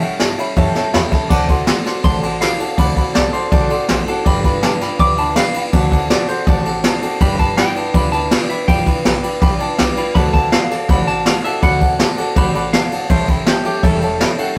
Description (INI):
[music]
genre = rockabilly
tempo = 163 BPM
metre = 4/4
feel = straight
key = D mixolydian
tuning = A4 = 439 Hz
[part]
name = semi-hollow electric guitar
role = melody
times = 0.0-14.6 s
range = G4 to D6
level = -23 LUFS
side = equal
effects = spring reverb
[part]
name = picked steel-string acoustic guitar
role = accompaniment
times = 0.0-14.6 s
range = A2 to B4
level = -25 LUFS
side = equal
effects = none
[part]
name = warm upright piano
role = accompaniment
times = 0.0-14.6 s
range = C#5 to D6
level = -25 LUFS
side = equal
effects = none
[part]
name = upright bass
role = bass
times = 0.0-14.4 s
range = E1 to G2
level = -27 LUFS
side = equal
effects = none
[part]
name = jazz brush drum kit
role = drums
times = 0.0-14.5 s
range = crash cymbal, kick drum, ride cymbal, snare drum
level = -18 LUFS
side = equal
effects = none
[sound]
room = moderate studio reverb, RT60 0.5 s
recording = rough rehearsal-room recording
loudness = -16 LUFS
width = mono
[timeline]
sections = 0.0-1.3 A section; 1.3-14.6 B section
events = upright piano fill 0.6-1.3; clean electric guitar solo 1.3-14.6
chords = 0.0 A7; 1.3 D7; 4.3 G7; 5.7 D7; 7.2 G7; 10.2 D7; 13.1 A7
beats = 0.20 0.57 0.94 | 1.31 1.68 2.05 2.42 | 2.79 3.15 3.52 3.89 | 4.26 4.63 5.00 5.37 | 5.74 6.11 6.48 6.84 | 7.21 7.58 7.95 8.32 | 8.69 9.05 9.42 9.79 | 10.16 10.53 10.89 11.26 | 11.63 12.00 12.37 12.73 | 13.10 13.47 13.84 14.20 | 14.57